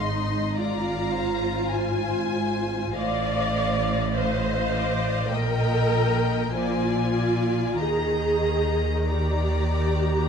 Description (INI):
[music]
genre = classical, slow romantic movement for string orchestra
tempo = 45-54 BPM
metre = 4/4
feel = rubato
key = Eb major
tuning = A4 = 440 Hz
[part]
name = warm studio violin section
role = melody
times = 0.0-10.3 s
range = F5 to C6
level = -32 LUFS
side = left 4 dB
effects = none
[part]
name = rich studio violin section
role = second line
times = 0.0-10.3 s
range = C5 to Ab5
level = -32 LUFS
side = left 4 dB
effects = none
[part]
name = warm studio viola section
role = accompaniment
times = 0.0-10.3 s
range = Eb4 to D5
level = -26 LUFS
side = right 1 dB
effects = none
[part]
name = rich studio cello section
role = bass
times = 0.0-10.3 s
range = Ab2 to Eb3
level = -29 LUFS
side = right 2 dB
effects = none
[part]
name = rich studio double bass section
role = bass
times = 0.0-10.3 s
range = Ab1 to Eb2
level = -28 LUFS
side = equal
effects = none
[sound]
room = wet scoring stage reverb, RT60 1.5 s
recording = dark, warm production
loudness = -22 LUFS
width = side -6 dB against mid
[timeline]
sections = 0.0-10.3 A section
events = none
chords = 0.0 Fm/Ab; 3.0 F7/A; 5.3 Eb/Bb; 6.5 Bb9; 7.8 Eb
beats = 0.58 1.72 | 2.97 4.16 5.33 6.54 | 7.80 9.09